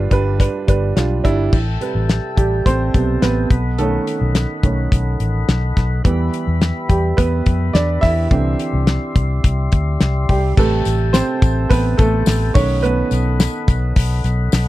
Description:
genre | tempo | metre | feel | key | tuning
piano-driven pop | 106 BPM | 4/4 | straight | A minor | A4 = 439 Hz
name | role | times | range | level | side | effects
warm upright piano | accompaniment | 0.0-14.7 s | G2 to E5 | -20 LUFS | right 4 dB | none
vintage muted fingered electric bass | bass | 0.0-14.7 s | G1 to F2 | -18 LUFS | left 1 dB | none
damped 70s drum kit | drums | 0.1-14.7 s | crash cymbal, hi-hat, kick drum, snare drum | -16 LUFS | left 1 dB | none
percussive tonewheel organ | sustained chords | 1.5-14.7 s | G4 to C6 | -27 LUFS | left 5 dB | slow rotary speaker
tambourine | percussion | 10.6-14.7 s | none | -34 LUFS | left 24 dB | none
room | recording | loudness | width
little or no reverb | dry, close 1970s-style studio recording | -14 LUFS | side -16 dB against mid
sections
0.0-1.5 A section; 1.5-10.6 B section; 10.6-14.7 C section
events
upright piano solo 1.5-10.6, 10.6-14.7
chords
0.0 G; 1.5 Am7; 3.5 B7; 6.1 Em; 8.3 Cadd9; 10.6 Am7; 12.6 B7

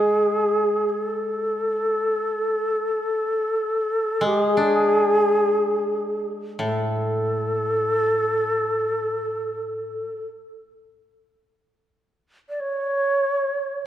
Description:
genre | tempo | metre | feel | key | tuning
japanese traditional, Japanese chamber music | free time | none | none | A ryukyu | A4 = 440 Hz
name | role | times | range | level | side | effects
breathy mellow shakuhachi | melody | 0.0-13.9 s | G#4 to D5 | -21 LUFS | equal | none
koto | accompaniment | 0.0-10.0 s | A2 to D4 | -28 LUFS | equal | none
room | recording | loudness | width
wet concert hall reverb, RT60 2.2 s | recorded in a church or concert hall | -20 LUFS | side -11 dB against mid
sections
0.0-13.9 A section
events
none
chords
none

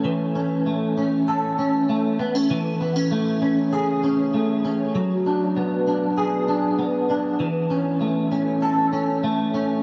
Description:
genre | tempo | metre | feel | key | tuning
dream pop | 98 BPM | 4/4 | straight | unclear | A4 = 440 Hz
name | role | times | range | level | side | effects
electric guitar at the edge of break-up | solo | 0.0-9.8 s | E3 to A4 | -22 LUFS | equal | ensemble chorus
room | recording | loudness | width
moderate huge ambient reverb, RT60 7.4 s | none | -22 LUFS | mono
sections
0.0-9.8 A section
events
none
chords
0.0 A/E; 2.5 Amaj7; 5.0 Bm6/F#; 7.4 A/E

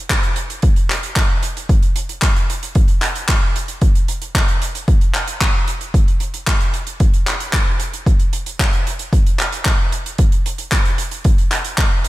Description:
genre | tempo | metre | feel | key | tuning
italo disco | 113 BPM | 4/4 | straight | none | none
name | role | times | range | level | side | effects
damped 70s drum kit | drums | 0.1-12.1 s | handclaps, hi-hat | -21 LUFS | equal | small room ambience, gated reverb
electronic kick drum | drums | 0.1-11.9 s | none | -16 LUFS | equal | small room ambience
room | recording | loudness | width
little or no reverb | faint mains hum | -15 LUFS | side -17 dB against mid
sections
0.0-12.1 A section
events
none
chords
none

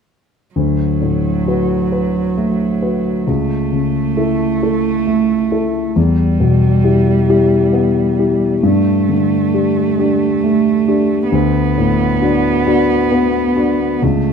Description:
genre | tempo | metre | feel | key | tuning
neoclassical piano and strings | 45 BPM (dotted quarters) | 6/8 | rubato | D major | A4 = 440 Hz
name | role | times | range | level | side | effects
dark cello | second line | 0.5-14.3 s | F#3 to B3 | -18 LUFS | right 7 dB | none
dark concert grand piano | accompaniment | 0.6-14.3 s | C#2 to B4 | -14 LUFS | left 2 dB | none
room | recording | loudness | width
moderate studio ambience, RT60 0.5 s | minimal, uncompressed stereo recording | -12 LUFS | side -6 dB against mid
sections
0.5-14.3 A section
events
none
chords
0.5 D6; 3.3 A/C#; 6.0 Em; 8.6 Gsus2; 11.3 D6

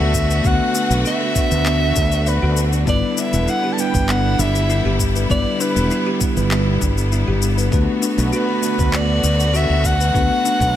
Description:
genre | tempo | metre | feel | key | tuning
sunset chillout | 99 BPM | 4/4 | straight | D major | A4 = 440 Hz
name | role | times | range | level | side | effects
breathy soprano saxophone | melody | 0.0-10.8 s | B4 to A5 | -22 LUFS | equal | digital delay
bell-like tine electric piano | accompaniment | 0.0-10.8 s | G3 to B4 | -23 LUFS | moving between left 7 dB and right 8 dB | auto-pan, tape echo
bright studio string section | sustained chords | 0.0-10.8 s | D3 to F#4 | -25 LUFS | left 1 dB | none
buzzing kalimba | arpeggios | 0.0-10.6 s | B3 to D5 | -27 LUFS | left 3 dB | tape echo
fretless electric bass | bass | 0.0-10.7 s | E1 to D2 | -19 LUFS | equal | none
electronic kick drum | drums | 0.1-10.7 s | none | -21 LUFS | equal | studio reverb
electronic shaker and handclaps | drums | 0.1-10.7 s | none | -27 LUFS | left 4 dB | studio reverb
room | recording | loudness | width
light reverb | none | -15 LUFS | side -11 dB against mid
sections
0.0-10.8 A section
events
none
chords
0.0 D6; 2.9 G6; 7.7 D6

